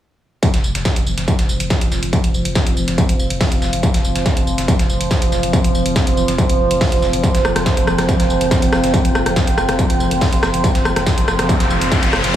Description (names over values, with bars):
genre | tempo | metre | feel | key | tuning
driving peak-time techno | 141 BPM | 4/4 | straight | unclear | A4 = 436 Hz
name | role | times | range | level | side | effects
overtone-sweeping drone | drone | 0.8-12.4 s | F3 to C4 | -20 LUFS | right 2 dB | chorus, built-in reverb, sidechain pumping
dusty soul sampler-style drum kit | drums | 0.4-12.3 s | hi-hat, snare drum, tambourine | -27 LUFS | equal | sidechain pumping on perc, high-pass filter on perc, high-pass filter on snare, sidechain pumping on hats, high-pass filter on hats, high-pass filter on room
electronic kick drum | drums | 0.4-12.0 s | none | -16 LUFS | equal | distortion, overdrive
techno drum kit | drums | 0.4-12.3 s | hi-hat, rim click | -22 LUFS | equal | overdrive, sidechain pumping on hats
warm sub bass | bass | 0.5-12.3 s | F1 | -23 LUFS | equal | overdrive, sidechain pumping, low-pass filter
riser | sound effects | 11.2-12.4 s | none | -21 LUFS | left 2 dB | none
room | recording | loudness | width
moderate huge ambient reverb, RT60 7.7 s | dreamy mix soaked in reverb, studio ambience | -14 LUFS | side -11 dB against mid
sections
0.4-12.4 A section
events
riser 11.2-12.4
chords
0.4 F5